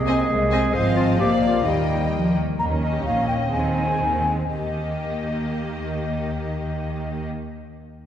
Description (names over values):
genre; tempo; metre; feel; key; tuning
quick classical-period movement for symphony orchestra; 117-135 BPM; 2/4; straight; Eb major; A4 = 440 Hz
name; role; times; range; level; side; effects
clear clarinet; second line; 0.0-2.3 s; Eb4 to C5; -26 LUFS; equal; none
mellow hollow concert flute; second line; 0.0-7.3 s; D5 to Bb5; -28 LUFS; left 2 dB; none
clear bassoon; accompaniment; 0.0-2.4 s; F3 to Ab3; -28 LUFS; left 2 dB; none
warm French horn section; sustained chords; 0.0-2.4 s; F3 to Bb3; -27 LUFS; left 3 dB; none
dark studio double bass section; bass; 0.0-7.3 s; Ab1 to Eb2; -28 LUFS; right 2 dB; none
rich studio cello section; bass; 0.0-7.3 s; Ab2 to F3; -27 LUFS; right 1 dB; none
rich studio violin section; melody; 0.1-7.3 s; Eb5 to Ab5; -34 LUFS; left 5 dB; none
warm studio violin section; second line; 0.1-7.3 s; Ab3 to Eb5; -33 LUFS; left 2 dB; none
rich studio viola section; accompaniment; 0.1-7.3 s; Bb3 to Db4; -30 LUFS; right 2 dB; none
room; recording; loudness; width
wet concert hall reverb, RT60 2.4 s; heard from further back in the room; -20 LUFS; side -10 dB against mid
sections
0.0-2.6 A section; 2.6-4.5 B section; 4.5-6.5 C section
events
slowing down 2.1-4.5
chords
0.0 Ab/C; 0.7 Ab6; 1.2 Bb; 1.7 Eb; 2.6 Eb7(no3); 3.5 Ab/Eb; 4.5 Eb